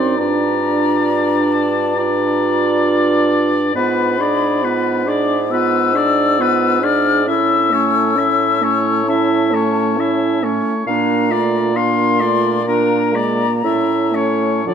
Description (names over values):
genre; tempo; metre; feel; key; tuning
classical, slow romantic movement for wind quintet; 67 BPM; 4/4; rubato; unclear; A4 = 443 Hz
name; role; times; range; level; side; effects
mellow hollow silver concert flute; melody; 0.0-14.7 s; C#5 to E#6; -20 LUFS; left 9 dB; none
clear oboe; second line; 0.0-14.7 s; Bb4 to F5; -21 LUFS; left 3 dB; none
clear clarinet; accompaniment; 0.0-14.7 s; Bb3 to G#4; -21 LUFS; right 8 dB; none
mellow French horn; accompaniment; 0.0-14.7 s; F3 to D4; -21 LUFS; equal; none
mellow bassoon; bass; 0.0-14.7 s; F#2 to D3; -21 LUFS; right 2 dB; none
room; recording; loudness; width
moderate concert hall reverb, RT60 2.3 s; none; -14 LUFS; side -8 dB against mid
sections
0.0-14.7 A section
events
none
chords
0.2 Gm7; 3.8 G#dim7; 7.3 A; 10.9 Bbmaj7; 12.7 Bb7; 13.6 A